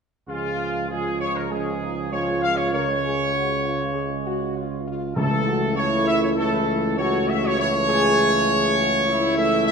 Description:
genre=classical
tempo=99 BPM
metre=4/4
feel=straight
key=unclear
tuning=A4 = 440 Hz
part: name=clear trumpet section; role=melody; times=0.3-9.7 s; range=F4 to F5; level=-23 LUFS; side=equal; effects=none
part: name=clear French horn section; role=sustained chords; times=0.3-9.7 s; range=Db4 to Bb4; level=-26 LUFS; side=equal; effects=none
part: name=mellow trombone section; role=sustained chords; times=0.3-9.7 s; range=Db3 to A3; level=-28 LUFS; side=equal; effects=none
part: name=warm tuba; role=bass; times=0.3-9.7 s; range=C#2 to Db2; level=-28 LUFS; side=right 3 dB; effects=none
part: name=timpani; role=percussion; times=5.2-6.0 s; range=C#3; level=-28 LUFS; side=equal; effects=none
room=wet scoring stage reverb, RT60 1.7 s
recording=minimal, uncompressed stereo recording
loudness=-20 LUFS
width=side -5 dB against mid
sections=0.3-9.7 A section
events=none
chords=0.3 Db; 5.2 A/C#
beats=| 0.28 0.89 1.51 2.12 | 2.73 3.35 3.95 4.56 | 5.17 5.77 6.38 6.98 | 7.58 8.18 8.78 9.37

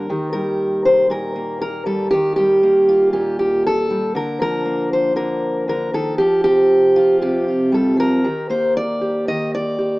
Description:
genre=folk, solo fingerstyle acoustic guitar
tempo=118 BPM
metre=4/4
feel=straight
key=unclear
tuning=A4 = 439 Hz
part: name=fingerpicked steel-string acoustic guitar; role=solo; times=0.0-10.0 s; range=Bb2 to Eb5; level=-15 LUFS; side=equal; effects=none
room=moderate large studio reverb, RT60 0.9 s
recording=small speaker sound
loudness=-15 LUFS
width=side -21 dB against mid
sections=0.1-10.0 A section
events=none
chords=0.1 Eb; 4.2 Bb/D; 6.2 Fsus2; 8.2 Eb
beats=| 0.08 0.59 1.10 1.61 | 2.12 2.63 3.14 3.65 | 4.16 4.67 5.17 5.68 | 6.19 6.70 7.22 7.73 | 8.25 8.76 9.27 9.78

